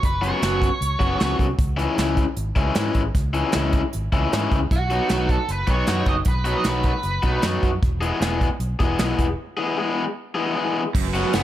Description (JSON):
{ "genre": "indie rock", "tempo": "154 BPM", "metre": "4/4", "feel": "straight", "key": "E major", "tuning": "A4 = 440 Hz", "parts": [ { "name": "octave-fuzz lead guitar", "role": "melody", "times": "0.0-1.4, 4.7-7.4 s", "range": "F#4 to D#5", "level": "-26 LUFS", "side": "right 2 dB", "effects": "distortion, slapback echo" }, { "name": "fingered electric bass", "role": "bass", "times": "0.0-11.4 s", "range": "E1 to G#2", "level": "-26 LUFS", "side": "equal", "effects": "none" }, { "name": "soft brush drum kit", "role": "drums", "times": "0.0-11.4 s", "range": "crash cymbal, hi-hat, kick drum, ride cymbal, snare drum", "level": "-23 LUFS", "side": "right 1 dB", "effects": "none" }, { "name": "raw garage guitar", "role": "riff", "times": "0.2-11.4 s", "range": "E3 to G#4", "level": "-24 LUFS", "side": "left 2 dB", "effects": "overdrive" }, { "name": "cranked stack guitar", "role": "riff", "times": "10.9-11.4 s", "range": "F#2 to B3", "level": "-26 LUFS", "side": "right 7 dB", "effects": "overdrive, wide subtle chorus" }, { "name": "string machine, full ensemble", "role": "sustained chords", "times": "11.0-11.4 s", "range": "F#3 to B4", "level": "-30 LUFS", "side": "right 1 dB", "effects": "none" } ], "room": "light reverb, studio reverb", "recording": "none", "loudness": "-19 LUFS", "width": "side -13 dB against mid", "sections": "0.0-11.0 A section", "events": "break 9.4-11.0", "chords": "0.0 F#sus4; 1.6 C#m; 4.7 B; 7.8 E", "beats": "| 0.03 0.42 0.81 1.20 | 1.59 1.98 2.37 2.76 | 3.15 3.54 3.93 4.32 | 4.71 5.10 5.49 5.88 | 6.26 6.66 7.04 7.43 | 7.83 8.22 8.61 9.00 | 9.39 9.78 10.17 10.56 | 10.95 11.34" }